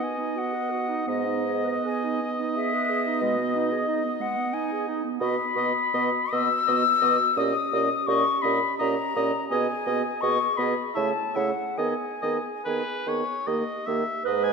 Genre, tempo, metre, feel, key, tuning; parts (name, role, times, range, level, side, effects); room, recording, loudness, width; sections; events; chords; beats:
classical, slow romantic movement for wind quintet; 68-92 BPM; 3/4; rubato; G# minor from 5.2 s; A4 = 440 Hz
mellow concert flute; melody; 0.0-14.5 s; D#5 to E6; -26 LUFS; left 6 dB
bright oboe; second line; 0.0-14.5 s; B4 to G#5; -31 LUFS; left 1 dB
mellow French horn; accompaniment; 0.0-14.5 s; G#3 to C#4; -33 LUFS; right 5 dB
mellow clarinet; accompaniment; 0.0-14.5 s; G#3 to B4; -31 LUFS; right 8 dB
mellow bassoon; bass; 1.1-14.5 s; G#2 to D#3; -30 LUFS; right 1 dB
wet concert hall reverb, RT60 2.1 s; minimal, uncompressed stereo recording; -23 LUFS; side -5 dB against mid
0.0-14.3 A section
0.0 B; 1.1 G#m; 3.2 G#m/B; 5.2 B; 7.4 D#7/A#; 9.5 G#m/B; 11.0 A/C#; 11.8 G#m/D#; 13.5 D#
0.37 | 1.07 1.85 2.54 | 3.21 3.87 4.54 | 5.21 5.94 6.68 | 7.38 8.08 8.80 | 9.51 10.22 10.96 | 11.78 12.65 13.47 | 14.25